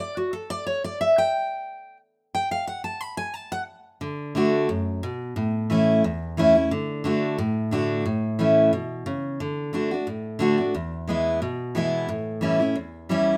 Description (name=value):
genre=bluegrass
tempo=178 BPM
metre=4/4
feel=swing 53% on 8ths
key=D major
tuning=A4 = 438 Hz
part: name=picked steel-string acoustic guitar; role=solo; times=0.0-13.4 s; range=E2 to B5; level=-24 LUFS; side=equal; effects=none
room=moderate studio reverb, RT60 0.8 s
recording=none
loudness=-25 LUFS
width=mono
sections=0.0-4.0 A section; 4.0-13.4 B section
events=steel-string acoustic guitar solo 0.0-4.0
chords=0.0 N.C.; 4.0 D; 5.4 A; 6.7 D; 8.1 A; 9.4 D; 10.7 E; 12.1 A7